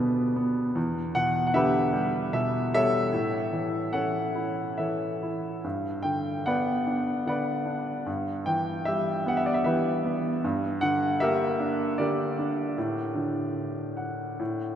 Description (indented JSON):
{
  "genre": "classical, lyrical solo piano",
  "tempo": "68-79 BPM",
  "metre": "3/4",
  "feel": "rubato",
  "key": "unclear",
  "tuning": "A4 = 440 Hz",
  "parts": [
    { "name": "clear grand piano", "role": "solo", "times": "0.0-14.8 s", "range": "D2 to G5", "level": "-25 LUFS", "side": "equal", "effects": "none" }
  ],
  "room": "wet cathedral reverb, RT60 5.8 s",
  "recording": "in a vast, echoing space",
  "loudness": "-25 LUFS",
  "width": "side -9 dB against mid",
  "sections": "0.0-14.8 A section",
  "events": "none",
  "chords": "0.0 G/D; 0.8 Em7; 3.1 A; 5.6 G; 8.1 Em/G; 10.4 Gm; 12.8 D/A"
}